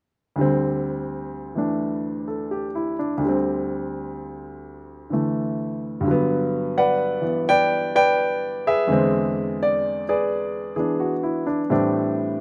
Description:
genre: solo jazz.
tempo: 85 BPM.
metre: 4/4.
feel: swing 67% on 8ths.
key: unclear.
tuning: A4 = 440 Hz.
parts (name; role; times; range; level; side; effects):
clear baby grand piano; solo; 0.4-12.4 s; D2 to G5; -23 LUFS; equal; slapback echo.
room: little or no reverb.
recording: recorded outdoors, with no room sound.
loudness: -23 LUFS.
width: mono.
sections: 0.4-6.1 A section; 6.1-12.4 B section.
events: none.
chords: 0.4 D7sus4; 6.1 Gmaj7; 8.9 E7b13; 11.7 Am7.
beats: | 0.39 1.10 1.81 2.52 | 3.22 3.93 4.64 5.35 | 6.05 6.76 7.47 8.18 | 8.88 9.59 10.30 11.01 | 11.71.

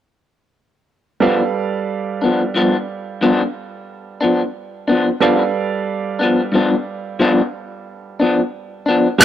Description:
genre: blues.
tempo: 60 BPM (dotted quarters).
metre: 12/8.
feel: straight.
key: G mixolydian.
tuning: A4 = 440 Hz.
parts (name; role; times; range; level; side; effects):
bright grand piano; accompaniment; 1.2-9.2 s; G3 to F5; -22 LUFS; right 7 dB; none.
electric guitar through a small old amp; accompaniment; 1.2-9.2 s; G2 to A4; -15 LUFS; left 2 dB; harmonic tremolo.
room: little or no reverb.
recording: dry, close 1970s-style studio recording.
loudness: -15 LUFS.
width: side -11 dB against mid.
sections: 1.2-9.2 A section.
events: none.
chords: 1.2 G9.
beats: | 1.22 2.22 3.22 4.21 | 5.21 6.21 7.21 8.21 | 9.20.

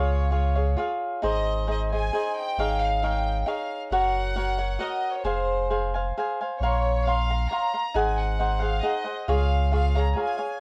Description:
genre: mexican folk, mariachi.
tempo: 134 BPM.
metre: 3/4.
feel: straight.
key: Ab major.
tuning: A4 = 443 Hz.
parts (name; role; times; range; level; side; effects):
bright chamber violin section; melody; 0.0-10.6 s; C5 to Bb5; -33 LUFS; equal; none.
cavaquinho; accompaniment; 0.0-10.6 s; Eb4 to C6; -29 LUFS; equal; none.
warm sub bass; bass; 0.0-10.1 s; F1 to Db2; -28 LUFS; equal; none.
room: light reverb.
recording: worn, warbling old tape, cassette tape, warbly pitch drift.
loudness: -25 LUFS.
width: mono.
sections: 0.0-1.2 A section; 1.2-10.6 B section.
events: none.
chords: 0.0 Db; 1.2 Ab; 2.6 Dbadd9/Ab; 3.9 Gb; 5.2 Fm; 6.6 Bbmadd9; 7.9 Ab7; 9.3 Db.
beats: 0.32 0.78 | 1.23 1.69 2.14 | 2.58 3.03 3.47 | 3.91 4.36 4.80 | 5.25 5.70 6.15 | 6.60 7.05 7.50 | 7.95 8.39 8.84 | 9.28 9.72 10.17.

